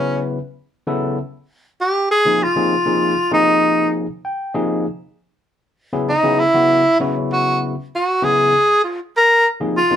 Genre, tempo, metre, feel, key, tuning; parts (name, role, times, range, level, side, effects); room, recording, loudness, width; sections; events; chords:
jazz; 65 BPM (dotted quarters); 6/8; straight; A4 = 440 Hz
breathy tenor saxophone; melody; 0.0-10.0 s; C#4 to Bb4; -14 LUFS; equal
overdriven tine electric piano; accompaniment; 0.0-10.0 s; C3 to G5; -20 LUFS; left 2 dB
moderate studio reverb, RT60 0.6 s; band playing live in one room; -15 LUFS; side -10 dB against mid
0.0-10.0 A section
tenor saxophone solo 0.0-10.0; tine electric piano fill 3.9-4.9
0.0 B9sus4; 1.2 Ebsus24; 4.9 Bsus24; 8.5 Ebsus24